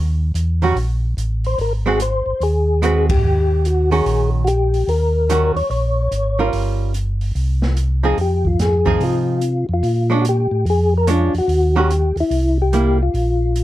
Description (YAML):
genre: soul jazz organ trio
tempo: 145 BPM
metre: 4/4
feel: swing 65% on 8ths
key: Eb mixolydian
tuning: A4 = 439 Hz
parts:
  - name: mellow tonewheel organ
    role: bass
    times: 0.0-13.6 s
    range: G1 to C3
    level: -18 LUFS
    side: equal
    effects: slow rotary speaker
  - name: open jazz drum kit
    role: drums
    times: 0.4-13.6 s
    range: hi-hat, kick drum, ride cymbal, snare drum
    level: -26 LUFS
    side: right 1 dB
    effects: none
  - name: archtop guitar, miked and amplified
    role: accompaniment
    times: 0.6-13.0 s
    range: Eb3 to B4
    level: -20 LUFS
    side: right 4 dB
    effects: none
  - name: percussive tonewheel organ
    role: melody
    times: 1.5-13.6 s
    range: Fb4 to Db5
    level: -19 LUFS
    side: left 2 dB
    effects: slow rotary speaker, chorus vibrato
room: little or no reverb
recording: close, detailed microphones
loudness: -15 LUFS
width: side -14 dB against mid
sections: 0.0-13.6 A section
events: band accent 3.0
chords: 0.0 Eb5; 1.6 Ab7#9; 3.2 Eb7#9; 6.5 Gm7b5; 7.4 Cmadd11; 8.2 Fm7; 9.8 Bb7#9; 11.5 Eb7#9; 12.3 C7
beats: 0.35 0.77 1.18 | 1.59 2.00 2.41 2.82 | 3.23 3.65 4.06 4.47 | 4.88 5.29 5.71 6.12 | 6.53 6.94 7.36 7.77 | 8.18 8.60 9.01 9.42 | 9.84 10.25 10.66 11.08 | 11.49 11.90 12.32 12.73 | 13.14 13.56